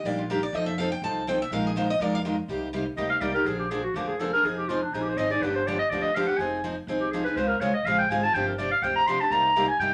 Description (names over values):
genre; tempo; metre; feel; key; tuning
acoustic string swing (jazz manouche); 246 BPM; 4/4; swing 55% on 8ths; C minor; A4 = 441 Hz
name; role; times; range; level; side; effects
picked steel-string acoustic guitar; melody; 0.0-2.2 s; F4 to A5; -32 LUFS; equal; none
picked steel-string acoustic guitar; accompaniment; 0.0-9.9 s; C3 to Bb4; -30 LUFS; equal; none
upright bass; bass; 0.0-9.9 s; F1 to G2; -38 LUFS; equal; none
clear clarinet; second line; 3.0-9.9 s; D4 to C6; -27 LUFS; equal; none
room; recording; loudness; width
wet studio ambience, RT60 0.5 s; none; -26 LUFS; mono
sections
0.0-2.5 A section; 2.5-9.9 A section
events
steel-string acoustic guitar solo 0.0-2.5; clarinet solo 2.5-9.9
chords
0.0 Ebmaj7; 0.5 F7; 1.5 Bb7sus4; 2.5 Cm7; 3.5 Bb7; 4.4 Fm7; 5.4 G7; 6.4 Fm7; 7.4 Dbmaj7; 8.3 G7sus4; 9.3 Cm7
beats
0.05 0.29 | 0.54 0.78 1.02 1.27 | 1.51 1.76 2.00 2.24 | 2.49 2.73 2.98 3.22 | 3.46 3.71 3.95 4.20 | 4.44 4.69 4.93 5.17 | 5.42 5.66 5.91 6.15 | 6.39 6.64 6.88 7.12 | 7.37 7.61 7.85 8.10 | 8.34 8.58 8.82 9.07 | 9.31 9.55 9.79